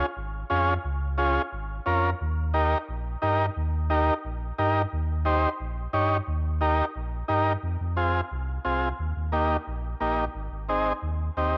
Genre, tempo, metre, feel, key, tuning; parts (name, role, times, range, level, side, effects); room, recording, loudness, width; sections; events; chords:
latin, cumbia; 177 BPM; 4/4; straight; A4 = 440 Hz
overdriven combo organ; accompaniment; 0.0-11.6 s; Bb3 to Db5; -29 LUFS; equal; cassette tape
sub bass with octave; bass; 0.0-11.6 s; Ab1 to G2; -31 LUFS; equal
moderate spring reverb, RT60 2.8 s; home recording on cassette; -27 LUFS; mono
0.0-7.6 A section; 7.6-11.6 B section
0.0 Db; 2.2 Eb; 7.6 Fm; 9.0 Eb; 10.4 Ab